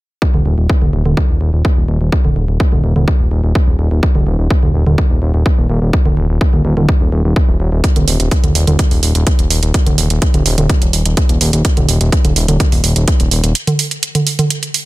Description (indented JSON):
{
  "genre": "melodic techno",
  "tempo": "126 BPM",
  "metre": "4/4",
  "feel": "straight",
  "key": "unclear",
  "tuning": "A4 = 439 Hz",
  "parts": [
    { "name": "electronic kick drum", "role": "drums", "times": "0.2-13.2 s", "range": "none", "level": "-13 LUFS", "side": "equal", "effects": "overdrive" },
    { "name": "fat analog bass", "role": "bass", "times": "0.3-13.5 s", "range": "Eb1", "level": "-14 LUFS", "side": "equal", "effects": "sidechain pumping" },
    { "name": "electronic congas and hi-hat", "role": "drums", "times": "0.3-14.8 s", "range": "none", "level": "-17 LUFS", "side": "right 2 dB", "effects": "overdrive" }
  ],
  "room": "little or no reverb",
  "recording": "none",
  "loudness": "-11 LUFS",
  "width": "side -18 dB against mid",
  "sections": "0.2-14.9 A section",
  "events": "break 13.6-14.9",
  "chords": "none"
}